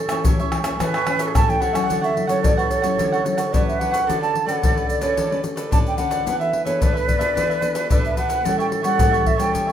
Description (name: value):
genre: samba and choro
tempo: 110 BPM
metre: 4/4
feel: straight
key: D major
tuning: A4 = 443 Hz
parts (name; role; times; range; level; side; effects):
- breathy hollow jazz flute; second line; 0.0-9.7 s; G#4 to C#5; -25 LUFS; right 3 dB; none
- nylon-string guitar; accompaniment; 0.0-9.7 s; A2 to A4; -28 LUFS; left 4 dB; none
- cavaquinho; accompaniment; 0.1-9.7 s; D4 to F#5; -28 LUFS; right 5 dB; none
- egg shaker, pandeiro, tamborim and surdo; percussion; 0.1-9.7 s; none; -22 LUFS; left 1 dB; none
- breathy alto ocarina; melody; 1.4-9.7 s; B4 to A5; -22 LUFS; right 1 dB; none
room: moderate large studio reverb, RT60 1.2 s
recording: minimal, uncompressed stereo recording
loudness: -18 LUFS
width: side -10 dB against mid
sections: 0.0-1.9 A section; 1.9-9.7 B section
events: none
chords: 0.0 A; 1.9 Dmaj9; 4.1 Bm9/D; 6.3 E7sus4; 8.4 A7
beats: 0.26 0.80 1.35 | 1.90 2.44 2.99 3.53 | 4.08 4.63 5.17 5.72 | 6.26 6.81 7.36 7.90 | 8.45 8.99 9.54